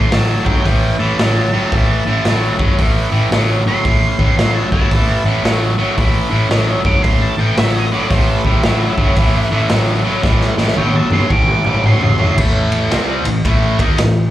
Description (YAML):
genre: blues rock power trio and southern rock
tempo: 113 BPM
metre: 4/4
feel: swing 64% on 8ths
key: A minor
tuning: A4 = 441 Hz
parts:
  - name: octave-fuzz lead guitar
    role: melody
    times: 0.0-12.4 s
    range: E4 to D6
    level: -22 LUFS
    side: right 2 dB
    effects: distortion
  - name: distorted electric guitar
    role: riff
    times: 0.0-14.3 s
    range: A2 to D#4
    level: -17 LUFS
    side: equal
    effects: overdrive, slapback echo
  - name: fingered electric bass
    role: bass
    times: 0.0-14.3 s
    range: A1 to G2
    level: -18 LUFS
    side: equal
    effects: none
  - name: raw garage drum kit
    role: drums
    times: 0.1-14.1 s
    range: crash cymbal, hi-hat, kick drum, ride cymbal, snare drum, toms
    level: -17 LUFS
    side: equal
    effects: none
room: small room ambience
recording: live gig heard through the venue's PA, club reverb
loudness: -12 LUFS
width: side -13 dB against mid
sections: 0.0-12.4 A section; 12.4-14.3 B section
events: drum fill 10.2-12.4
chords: 0.0 A5; 12.4 Am